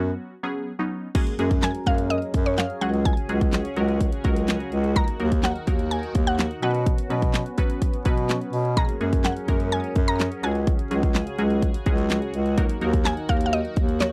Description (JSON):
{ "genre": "dance-pop", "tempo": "126 BPM", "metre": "4/4", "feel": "straight", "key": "unclear", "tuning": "A4 = 440 Hz", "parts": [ { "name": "wavetable chord stab", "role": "accompaniment", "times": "0.0-14.1 s", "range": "F#3 to B4", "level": "-32 LUFS", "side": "equal", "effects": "sidechain pumping" }, { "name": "clear bass clarinet", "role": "bass", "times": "0.0-14.1 s", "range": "Db2 to B2", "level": "-27 LUFS", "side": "equal", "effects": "sidechain pumping" }, { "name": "sweeping resonant pad", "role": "sustained chords", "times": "1.1-14.1 s", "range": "Db3 to Bb4", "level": "-36 LUFS", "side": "equal", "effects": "chorus, tremolo, sidechain pumping" }, { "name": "pop drum kit", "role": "drums", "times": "1.1-14.1 s", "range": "crash cymbal, handclaps, hi-hat, kick drum, snare drum", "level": "-25 LUFS", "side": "equal", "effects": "none" }, { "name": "mallet-like synth pluck", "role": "melody", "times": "1.6-14.1 s", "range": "Db5 to Bb5", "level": "-30 LUFS", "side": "equal", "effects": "chorus, slapback echo" } ], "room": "little or no reverb", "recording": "dry, close 1970s-style studio recording", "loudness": "-24 LUFS", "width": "mono", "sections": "0.0-1.1 A section; 1.1-14.1 B section", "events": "break 0.2-1.1", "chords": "0.0 Bsus2; 1.1 Gbadd9; 2.8 Dbsus4; 5.0 Ebm; 6.6 Bsus2; 8.8 Gbadd9; 10.4 Dbsus4; 12.6 Ebm" }